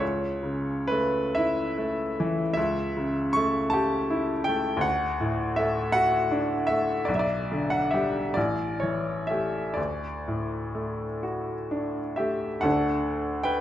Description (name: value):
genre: classical, romantic nocturne for solo piano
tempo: 40-55 BPM (dotted quarters)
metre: 6/8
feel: rubato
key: D major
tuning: A4 = 438 Hz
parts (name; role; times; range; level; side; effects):
- bright baby grand piano; solo; 0.0-13.6 s; A1 to C#6; -24 LUFS; equal; none
room: moderate recital hall reverb, RT60 1.4 s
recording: none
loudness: -24 LUFS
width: side -12 dB against mid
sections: 0.0-12.6 A section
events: none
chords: 0.0 A/C#; 2.6 A7/C#; 4.8 D; 7.1 G/B; 8.4 A5; 9.8 D